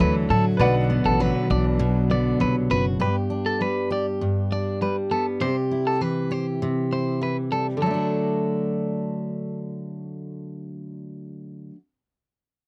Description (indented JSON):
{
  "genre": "acoustic pop",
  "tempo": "100 BPM",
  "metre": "4/4",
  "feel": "straight",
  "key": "D mixolydian",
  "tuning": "A4 = 440 Hz",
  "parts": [
    { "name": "dark cello", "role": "second line", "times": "0.0-2.7 s", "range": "D3 to F#3", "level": "-30 LUFS", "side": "equal", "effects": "none" },
    { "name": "bright upright piano", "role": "accompaniment", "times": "0.0-3.0 s", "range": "A4 to F#5", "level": "-31 LUFS", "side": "equal", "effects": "none" },
    { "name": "picked steel-string acoustic guitar", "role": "accompaniment", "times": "0.0-11.8 s", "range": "G2 to G4", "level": "-26 LUFS", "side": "equal", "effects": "none" },
    { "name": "clean electric guitar", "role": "arpeggios", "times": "0.0-9.6 s", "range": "A4 to D5", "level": "-29 LUFS", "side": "equal", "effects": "none" },
    { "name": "upright bass", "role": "bass", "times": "0.0-3.0 s", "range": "F#1 to A2", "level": "-28 LUFS", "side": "equal", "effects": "none" }
  ],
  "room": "light reverb",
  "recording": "dry, close 1970s-style studio recording",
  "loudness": "-23 LUFS",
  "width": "mono",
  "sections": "0.0-3.0 A section; 3.0-7.8 B section; 7.8-10.2 C section",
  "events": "none",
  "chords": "0.0 D; 0.6 Bm; 3.0 G; 5.4 C; 7.8 D"
}